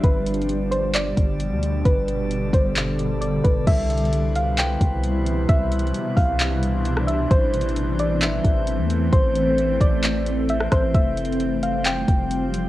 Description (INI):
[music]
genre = hip hop, atmospheric cloud-rap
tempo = 132 BPM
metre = 4/4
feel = half-time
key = C major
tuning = A4 = 441 Hz
[part]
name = soft round pluck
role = melody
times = 0.0-12.7 s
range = B4 to G5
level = -26 LUFS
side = equal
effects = chorus, low-pass filter, cassette tape, analog delay
[part]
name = granular cloud pad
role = sustained chords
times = 0.0-12.7 s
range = B2 to E4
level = -25 LUFS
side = equal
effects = built-in reverb, sidechain pumping, cassette tape
[part]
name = long sustained 808-style bass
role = bass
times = 0.0-12.7 s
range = F1 to E2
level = -25 LUFS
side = equal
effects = none
[part]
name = smooth R&B drum kit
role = drums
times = 0.0-12.6 s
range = crash cymbal, handclaps, hi-hat, kick drum, rim click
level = -20 LUFS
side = equal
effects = cassette tape
[part]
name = drifting glass-harmonics texture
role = texture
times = 0.0-12.7 s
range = E3 to D5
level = -33 LUFS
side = equal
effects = chorus, built-in reverb, cassette tape
[sound]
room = light reverb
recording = home recording on cassette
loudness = -18 LUFS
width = side -15 dB against mid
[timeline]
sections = 0.0-3.7 A section; 3.7-12.7 B section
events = none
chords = 0.0 G; 3.7 Cmaj7; 7.3 Am; 10.9 Fsus2